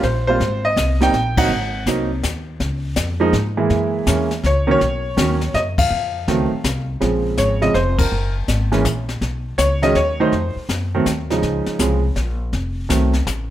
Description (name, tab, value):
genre	jazz piano trio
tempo	163 BPM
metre	3/4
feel	swing 65% on 8ths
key	Bb minor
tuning	A4 = 440 Hz
part	clear concert grand piano	melody	0.0-13.1 s	Db3 to G5	-18 LUFS	right 2 dB	plate reverb
part	upright bass	bass	0.0-13.5 s	F1 to Ab2	-21 LUFS	equal	none
part	jazz brush drum kit	drums	0.0-13.5 s	brushed snare drum, crash cymbal, hi-hat, kick drum, snare drum	-24 LUFS	left 3 dB	none
room	light reverb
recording	none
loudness	-16 LUFS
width	side -12 dB against mid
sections	0.0-7.0 A section; 7.0-13.5 B section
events	band accent 1.3, 5.7, 7.9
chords	0.4 Abmaj9; 1.5 Ab7; 2.6 Db6; 3.7 Gb9; 4.8 B; 5.9 F5; 7.0 Bbm7; 8.1 Gbadd9; 9.2 Badd9; 10.3 F7(no3); 11.4 Bbm7; 12.5 F7b9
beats	0.03 | 0.40 0.76 1.13 | 1.50 1.86 2.23 | 2.60 2.97 3.33 | 3.70 4.07 4.44 | 4.80 5.17 5.54 | 5.91 6.27 6.64 | 7.01 7.38 7.75 | 8.11 8.48 8.85 | 9.22 9.59 9.96 | 10.32 10.69 11.06 | 11.43 11.80 12.16 | 12.53 12.90 13.27